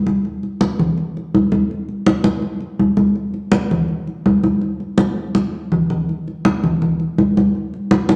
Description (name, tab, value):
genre	jazz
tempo	164 BPM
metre	4/4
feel	straight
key	none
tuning	none
part	congas	percussion	0.1-8.2 s	none	-18 LUFS	equal	none
room	wet large studio reverb, RT60 1.4 s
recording	none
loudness	-18 LUFS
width	mono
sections	0.0-6.1 A section; 6.1-8.2 A section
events	drum fill 5.0-6.1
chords	none